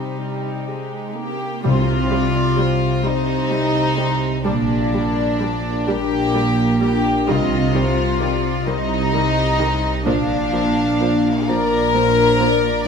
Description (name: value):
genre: cinematic, emotional film score for orchestra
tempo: 43 BPM (dotted quarters)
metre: 6/8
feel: rubato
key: C minor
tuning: A4 = 442 Hz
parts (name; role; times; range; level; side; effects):
- warm studio violin section; melody; 0.0-12.9 s; Bb4 to F5; -27 LUFS; left 4 dB; none
- warm symphonic violin section; second line; 0.0-12.9 s; D4 to Bb4; -21 LUFS; left 2 dB; none
- dark studio viola section; accompaniment; 0.0-12.9 s; Eb3 to Bb3; -28 LUFS; right 2 dB; none
- concert harp; arpeggios; 0.0-12.9 s; Bb2 to C5; -24 LUFS; left 7 dB; none
- warm symphonic cello section; bass; 0.0-12.7 s; Bb2 to C3; -23 LUFS; right 4 dB; none
- warm symphonic double bass section; bass; 1.6-12.7 s; Bb1 to C2; -25 LUFS; right 5 dB; none
- timpani; percussion; 1.7-8.6 s; C3; -25 LUFS; right 4 dB; none
room: moderate scoring stage reverb, RT60 1.6 s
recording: none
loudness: -16 LUFS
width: side -6 dB against mid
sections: 0.0-1.6 A section; 1.6-12.9 A section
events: none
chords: 0.0 Cm; 4.4 Gm/Bb; 7.3 Cm; 10.1 Bb